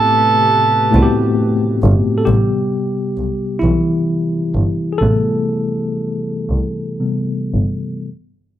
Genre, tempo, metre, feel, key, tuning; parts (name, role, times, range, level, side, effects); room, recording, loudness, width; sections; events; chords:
slow six-eight R&B; 36-45 BPM (dotted quarters); 6/8; straight; A minor; A4 = 440 Hz
warm tenor saxophone; melody; 0.0-1.4 s; A4; -14 LUFS; right 4 dB
mellow tine electric piano; accompaniment; 0.0-8.1 s; A2 to A4; -17 LUFS; left 1 dB; medium stereo tremolo
hollow soft pad; sustained chords; 0.0-2.2 s; C3 to B4; -28 LUFS; right 2 dB; chorus
muted double bass; bass; 0.9-7.6 s; G1 to C2; -16 LUFS; equal
moderate studio reverb, RT60 0.8 s; low-pass filter; -14 LUFS; side -12 dB against mid
0.0-2.3 A section; 2.3-8.1 B section
slowing down 2.3-8.1; tine electric piano solo 2.3-8.1; filter sweep 2.3-8.1
0.0 Am9; 2.3 Am7